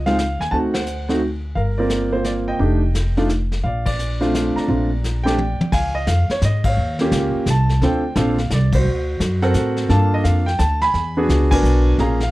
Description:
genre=jazz piano trio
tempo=173 BPM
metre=3/4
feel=swing 65% on 8ths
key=unclear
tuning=A4 = 440 Hz
part: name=warm concert grand piano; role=melody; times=0.0-12.3 s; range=Ab3 to Cb6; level=-20 LUFS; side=right 1 dB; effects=none
part: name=upright bass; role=bass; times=0.0-12.3 s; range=F1 to A2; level=-19 LUFS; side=equal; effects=none
part: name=vintage brush drum kit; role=drums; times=0.1-12.3 s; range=brushed snare drum, crash cymbal, hi-hat, kick drum, ride cymbal, snare drum, toms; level=-26 LUFS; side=left 1 dB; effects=none
room=little or no reverb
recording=dark, warm production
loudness=-16 LUFS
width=side -18 dB against mid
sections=0.0-5.7 A section; 5.7-12.3 B section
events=band accent 0.7, 3.8, 6.6, 8.7, 11.4; drum fill 5.0-5.7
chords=0.0 Dbadd9; 0.5 D7b9; 1.6 Gm7; 2.6 F13; 3.6 Bbmaj9; 5.7 Db; 6.8 Eb9; 7.8 Dm7; 8.8 D7b13; 9.9 Gm9; 10.9 E9

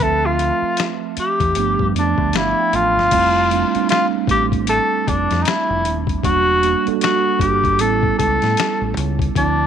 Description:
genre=R&B, neo-soul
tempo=77 BPM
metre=4/4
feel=swing 60% on 16ths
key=unclear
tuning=A4 = 440 Hz
part: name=breathy tenor saxophone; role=melody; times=0.0-9.7 s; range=D4 to A4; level=-18 LUFS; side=left 2 dB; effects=none
part: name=mellow tine electric piano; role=accompaniment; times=0.0-9.7 s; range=F3 to A5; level=-22 LUFS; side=right 18 dB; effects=medium stereo tremolo
part: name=deep dub fingered electric bass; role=bass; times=0.0-9.7 s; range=Eb1 to A2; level=-22 LUFS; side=left 1 dB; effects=transformer saturation
part: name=boom bap sampler-style drum kit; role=drums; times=0.0-9.6 s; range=crash cymbal, finger snaps, hi-hat, kick drum, snare drum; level=-23 LUFS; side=left 6 dB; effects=none
room=moderate spring reverb, RT60 2.5 s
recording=1960s-style stereo with parts hard left and right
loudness=-15 LUFS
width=side -8 dB against mid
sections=0.0-3.1 A section; 3.1-9.7 B section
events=tine electric piano fill 1.9-3.1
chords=0.0 Dm9; 1.6 G9; 3.1 Fmaj7; 6.2 Em7b5; 7.8 A7

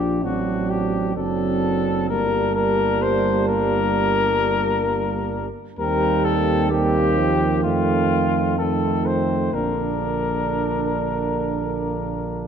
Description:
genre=classical, brass quintet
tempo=64 BPM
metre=4/4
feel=straight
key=Bb major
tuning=A4 = 440 Hz
part: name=mellow trumpet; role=melody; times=0.0-12.4 s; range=F4 to C5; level=-24 LUFS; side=left 6 dB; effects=none
part: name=mellow flugelhorn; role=second line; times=0.0-12.5 s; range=C4 to F4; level=-28 LUFS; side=right 8 dB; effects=none
part: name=dark euphonium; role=accompaniment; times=0.0-12.5 s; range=D3 to G3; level=-26 LUFS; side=right 6 dB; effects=none
part: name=mellow French horn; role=accompaniment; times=0.0-12.5 s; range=A3 to D4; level=-28 LUFS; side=left 2 dB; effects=none
part: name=warm bass trombone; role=bass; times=0.0-12.5 s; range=F#1 to F2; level=-25 LUFS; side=right 2 dB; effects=none
room=wet scoring stage reverb, RT60 1.8 s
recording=dark, warm production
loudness=-19 LUFS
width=side -7 dB against mid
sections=0.0-12.5 A section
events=none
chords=0.2 D7/A; 2.1 Gm; 5.8 Cm7/Eb; 7.6 F7; 9.5 Bb

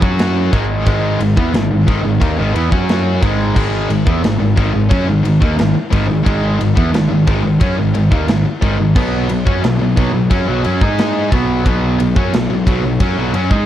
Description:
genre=heavy metal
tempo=89 BPM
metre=4/4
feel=straight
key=unclear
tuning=A4 = 438 Hz
part: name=distorted electric guitar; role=riff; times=0.0-13.7 s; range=Ab2 to Ab4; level=-19 LUFS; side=right 8 dB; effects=distortion
part: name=high-gain distorted guitar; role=riff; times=0.0-13.7 s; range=Ab2 to Ab4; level=-18 LUFS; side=left 6 dB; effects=distortion
part: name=fuzz picked electric bass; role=bass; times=0.0-13.7 s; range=Ab1 to Ab2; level=-18 LUFS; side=equal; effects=overdrive
part: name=tight metal drum kit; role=drums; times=0.0-13.7 s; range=crash cymbal, kick drum, ride cymbal, snare drum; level=-18 LUFS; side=equal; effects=none
room=light reverb, small room ambience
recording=cassette tape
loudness=-12 LUFS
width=side -12 dB against mid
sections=0.0-13.7 A section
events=none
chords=0.0 Ab5; 9.0 B5

